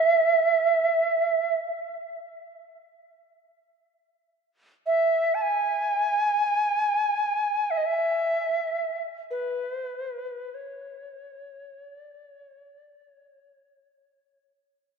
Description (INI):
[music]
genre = world meditative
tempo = free time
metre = none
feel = none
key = C# minor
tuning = A4 = 440 Hz
[part]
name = reedy Native American-style cedar flute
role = melody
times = 0.0-14.5 s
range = B4 to A5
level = -23 LUFS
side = right 2 dB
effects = diffuse ambient delay
[sound]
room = wet church reverb, RT60 3.3 s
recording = dark, warm production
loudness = -23 LUFS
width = side -6 dB against mid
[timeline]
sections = 0.0-14.8 A section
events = fade-out 0.0-14.8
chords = none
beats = free time